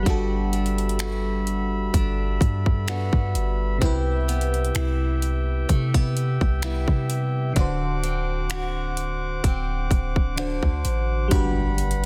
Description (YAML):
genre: contemporary R&B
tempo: 64 BPM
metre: 4/4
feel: swing 54% on 16ths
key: G major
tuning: A4 = 436 Hz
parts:
  - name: FM electric piano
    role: accompaniment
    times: 0.0-12.1 s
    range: C3 to C5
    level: -33 LUFS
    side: equal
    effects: chorus, phaser
  - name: chamber organ, principal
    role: sustained chords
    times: 0.0-12.1 s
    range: G3 to D6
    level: -34 LUFS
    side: equal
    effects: none
  - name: picked acoustic archtop guitar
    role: arpeggios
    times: 0.0-12.1 s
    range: C3 to F#4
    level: -35 LUFS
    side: equal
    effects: none
  - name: warm 808-style bass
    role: bass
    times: 0.0-12.1 s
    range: D1 to C3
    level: -27 LUFS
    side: equal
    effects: none
  - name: trap drum kit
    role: drums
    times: 0.1-12.0 s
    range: finger snaps, hi-hat, kick drum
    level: -25 LUFS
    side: equal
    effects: soft clipping on snare
  - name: impact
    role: sound effects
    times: 11.5-12.1 s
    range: none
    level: -35 LUFS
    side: equal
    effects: none
room: digital ambience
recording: dense, heavily limited modern master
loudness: -24 LUFS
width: mono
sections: 0.0-11.3 A section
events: impact 11.3-12.1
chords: 0.0 Gmaj7; 3.8 Cmaj7; 7.6 D7; 11.3 Gmaj7